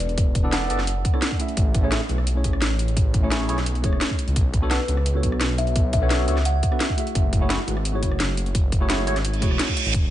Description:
liquid drum and bass; 172 BPM; 4/4; straight; A4 = 440 Hz
tine electric piano; accompaniment; 0.0-9.9 s; A3 to E5; -28 LUFS; equal; phaser, digital delay
dark detuned saw bass; bass; 0.0-10.1 s; E1 to C#2; -24 LUFS; equal
drum and bass drum kit; drums; 0.0-10.0 s; hi-hat, rim click, snare drum; -27 LUFS; equal
impact and reverse cymbal; sound effects; 0.0-0.2, 9.4-9.9 s; -28 LUFS; right 5 dB
electronic kick drum; drums; 0.2-10.0 s; -22 LUFS; equal
kalimba; melody; 0.5-1.0, 4.7-6.7 s; B4 to F#5; -31 LUFS; equal; ping-pong delay
digital ambience; nothing above 10.3 kHz; -19 LUFS; side -13 dB against mid
0.0-10.1 A section
impact 0.0; reverse cymbal 9.4-9.9
0.0 E7sus4; 1.4 Amaj7; 4.4 Bm9; 7.0 F#m9

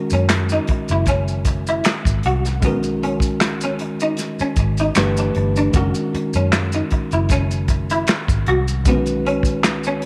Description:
R&B, neo-soul; 77 BPM; 4/4; swing 54% on 16ths; B major; A4 = 438 Hz
tine electric piano; accompaniment; 0.0-10.1 s; D3 to B4; -26 LUFS; equal
semi-hollow electric guitar; second line; 0.1-10.0 s; B3 to F#4; -26 LUFS; equal; ensemble chorus
vintage muted fingered electric bass; bass; 0.1-10.1 s; F#1 to F#2; -24 LUFS; equal
warm soul drum kit; drums; 0.1-10.1 s; handclaps, hi-hat, kick drum, snare drum; -22 LUFS; equal
maracas and finger snaps; percussion; 0.1-10.0 s; -31 LUFS; equal
moderate spring reverb, RT60 2.0 s; -19 LUFS; mono
0.0-10.1 A section
0.0 F#add9; 2.6 B69; 5.0 Gadd9; 5.7 F#add9; 8.9 B69

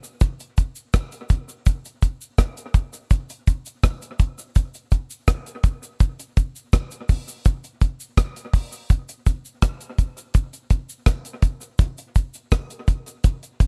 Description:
reggae; 83 BPM; 4/4; straight
cabasa; percussion; 0.0-13.7 s; -45 LUFS; equal
deep reggae drum kit; drums; 0.2-13.7 s; hi-hat, kick drum, rim click; -20 LUFS; equal
little or no reverb; dark, warm production; -24 LUFS; mono
0.0-13.7 A section

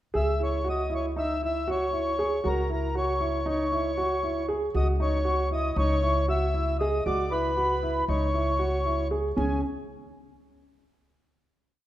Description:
contemporary instrumental, chamber music in an uneven meter; 234 BPM (eighths); 9/8; straight; C# dorian; A4 = 442 Hz
dark grand piano; arpeggios; 0.1-9.6 s; C#4 to G#4; -29 LUFS; right 1 dB
upright bass; bass; 0.1-9.6 s; C#2; -29 LUFS; equal
mellow accordion; melody; 0.2-9.6 s; G#4 to E5; -29 LUFS; left 1 dB
moderate concert hall reverb, RT60 1.9 s; -24 LUFS; side -13 dB against mid
0.1-9.4 A section; 9.4-11.7 final chord
0.1 C#m; 4.8 C#madd9; 5.8 C#m; 7.1 Dmaj13/C#; 8.1 C#m; 9.4 C#5

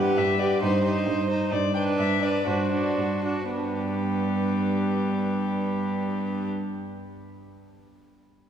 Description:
quick classical-period movement for string quartet; 108-135 BPM; 2/4; rubato; G major; A4 = 440 Hz
dark violin; melody; 0.0-6.5 s; G4 to G5; -31 LUFS; left 3 dB
warm violin; second line; 0.0-6.5 s; D4 to C5; -33 LUFS; left 1 dB
warm viola; accompaniment; 0.0-6.5 s; B3 to G4; -28 LUFS; right 2 dB
rich cello; bass; 0.0-6.5 s; G2; -27 LUFS; right 1 dB
wet church reverb, RT60 3.4 s; recorded in a church or concert hall; -23 LUFS; side -8 dB against mid
0.0-3.5 A section; 3.5-5.7 B section
slowing down 1.1-3.5
0.0 G; 0.6 Cm/G; 1.5 G

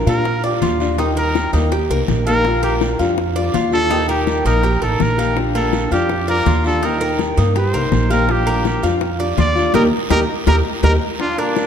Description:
latin, Cuban son and guajira; 164 BPM; 4/4; straight; A4 = 440 Hz
picked acoustic archtop guitar; accompaniment; 0.0-11.7 s; D3 to G4; -21 LUFS; left 3 dB
Cuban tres; arpeggios; 0.0-11.7 s; Bb3 to F5; -22 LUFS; right 2 dB
trumpet with straight mute; melody; 0.1-11.7 s; D4 to D5; -22 LUFS; right 1 dB
upright bass; bass; 0.1-11.0 s; A1 to Bb2; -19 LUFS; right 1 dB
guiro; percussion; 0.1-11.7 s; -33 LUFS; right 5 dB
bongos; percussion; 0.3-11.7 s; -24 LUFS; left 7 dB
growling trumpet; second line; 11.2-11.7 s; Bb3 to D4; -28 LUFS; right 6 dB
moderate concert hall reverb, RT60 1.9 s; dark, warm production; -14 LUFS; side -8 dB against mid
0.0-11.2 A section
muted trumpet solo 0.0-11.2; band accent 9.7-11.2; drum fill 10.3-11.2
0.0 Bb6; 1.0 Eb; 2.4 Bb6; 3.9 Eb; 5.4 Bb6; 6.8 Eb; 8.3 Bb6; 9.7 Eb

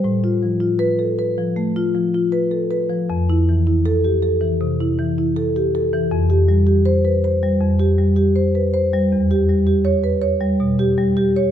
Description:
classical, contemporary piece for solo marimba; 80 BPM; 4/4; rubato; A4 = 440 Hz
marimba with medium mallets; solo; 0.0-11.5 s; E2 to C#5; -16 LUFS; equal
wet recital hall reverb, RT60 1.4 s; -16 LUFS; side -10 dB against mid
0.0-11.5 A section
0.0 F/A; 3.1 Fmaj9; 6.1 Fsus2; 9.1 Em6

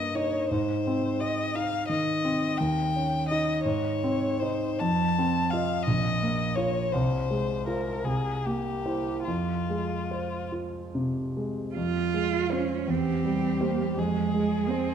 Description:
classical, slow romantic movement for piano trio; 47-59 BPM (dotted quarters); 6/8; rubato; F minor; A4 = 441 Hz
rich violin; melody; 0.0-14.9 s; F4 to A5; -30 LUFS; left 5 dB
warm grand piano; accompaniment; 0.0-14.9 s; Bb1 to Eb5; -27 LUFS; right 1 dB
rich cello; second line; 11.8-14.9 s; G3 to F4; -28 LUFS; right 8 dB
moderate scoring stage reverb, RT60 1.7 s; -25 LUFS; side -8 dB against mid
0.0-11.8 A section; 11.8-14.9 A section
0.0 Eb/G; 0.5 Ab; 2.6 Eb7; 3.6 Ab; 4.8 F7; 5.9 Bbm; 6.9 Fm/C; 8.1 C7; 9.3 Fm; 12.9 C/E; 14.0 Fm

